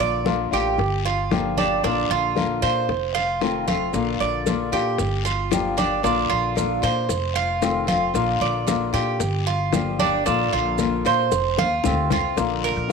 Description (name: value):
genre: latin, Cuban son and guajira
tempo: 114 BPM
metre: 4/4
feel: straight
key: Bb major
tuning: A4 = 441 Hz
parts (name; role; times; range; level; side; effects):
- flamenco guitar; accompaniment; 0.0-12.9 s; C3 to G4; -25 LUFS; left 10 dB; none
- Cuban tres; arpeggios; 0.0-12.9 s; D4 to D5; -23 LUFS; right 8 dB; none
- upright bass; bass; 0.0-12.9 s; F1 to Bb2; -28 LUFS; equal; none
- congas; percussion; 0.0-12.9 s; none; -30 LUFS; equal; none
- bongos; percussion; 0.3-12.9 s; none; -29 LUFS; left 12 dB; none
- guiro; percussion; 0.3-12.9 s; none; -35 LUFS; left 13 dB; none
- maracas; percussion; 3.9-12.9 s; none; -36 LUFS; right 13 dB; none
room: wet echo chamber reverb, RT60 1.4 s, small room ambience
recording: 1960s-style stereo with parts hard left and right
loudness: -19 LUFS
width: side -5 dB against mid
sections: 0.0-12.4 A section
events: drum fill 11.3-12.4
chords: 0.0 Bb; 0.8 Gm7; 1.8 Bb; 2.9 F7; 3.9 Bb; 5.0 Gm7; 6.0 Bb; 7.1 F7; 8.1 Bb; 9.2 Gm7; 10.3 Bb; 11.3 F7; 12.4 Bb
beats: 0.27 0.79 1.32 | 1.84 2.36 2.89 3.41 | 3.94 4.46 4.99 5.51 | 6.04 6.57 7.09 7.62 | 8.15 8.68 9.21 9.73 | 10.26 10.79 11.32 11.85 | 12.37 12.90